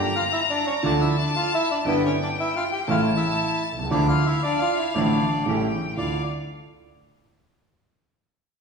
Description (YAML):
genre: tango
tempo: 117 BPM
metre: 4/4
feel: rubato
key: D harmonic minor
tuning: A4 = 440 Hz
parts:
  - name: bandoneon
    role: melody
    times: 0.0-6.2 s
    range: B3 to G5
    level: -25 LUFS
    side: left 1 dB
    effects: none
  - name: bright violin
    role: second line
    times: 0.0-6.2 s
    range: F5 to Bb5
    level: -28 LUFS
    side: left 3 dB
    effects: none
  - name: warm concert grand piano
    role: accompaniment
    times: 0.0-6.2 s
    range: G1 to F4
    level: -24 LUFS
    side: right 1 dB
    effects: none
  - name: bandoneon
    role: stabs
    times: 0.0-6.2 s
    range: F3 to G4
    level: -33 LUFS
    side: right 3 dB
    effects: none
room: wet recital hall reverb, RT60 1.5 s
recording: recorded in a church or concert hall, studio ambience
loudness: -20 LUFS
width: side -5 dB against mid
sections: 0.0-6.0 A section; 6.0-8.0 B section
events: none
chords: 0.0 Gm7; 0.8 Dm; 1.9 G6; 2.9 A; 3.9 Dmadd9; 5.5 A7; 6.0 Dmadd9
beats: 0.32 0.83 1.35 | 1.86 2.37 2.88 3.40 | 3.91 4.43 4.94 5.46 | 5.98